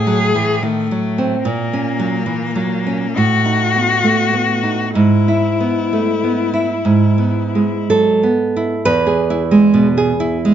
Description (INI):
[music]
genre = romantic duo for cello and classical guitar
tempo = 55-75 BPM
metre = 4/4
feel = rubato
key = E major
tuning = A4 = 440 Hz
[part]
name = rich cello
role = melody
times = 0.0-7.9 s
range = A3 to G#4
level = -18 LUFS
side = left 6 dB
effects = none
[part]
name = nylon-string guitar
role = accompaniment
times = 0.0-10.5 s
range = E2 to B4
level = -14 LUFS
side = right 3 dB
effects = none
[sound]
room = moderate recital hall reverb, RT60 1.3 s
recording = nothing above 7.7 kHz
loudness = -13 LUFS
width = side -10 dB against mid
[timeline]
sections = 0.0-8.9 A section; 8.9-10.5 B section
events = none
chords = 0.0 F#m7b5/A; 1.5 F#7/A#; 3.2 B7/A; 5.0 E/G#; 8.9 E